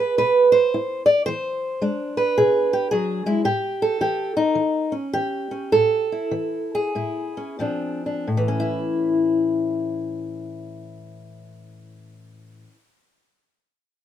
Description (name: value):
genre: acoustic country blues, solo or duo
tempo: 84-110 BPM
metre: 4/4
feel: swing 65% on 8ths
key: unclear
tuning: A4 = 439 Hz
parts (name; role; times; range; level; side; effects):
- fingerpicked old ladder-braced acoustic guitar; solo; 0.0-12.8 s; A2 to D5; -20 LUFS; equal; none
room: light reverb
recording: minimal, uncompressed stereo recording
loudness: -19 LUFS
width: side -10 dB against mid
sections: 0.0-8.3 A section; 8.3-11.1 B section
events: slowing down 3.5-8.3; stop 3.5-7.6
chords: 0.0 E7; 3.5 A7; 7.6 Bb9; 8.3 A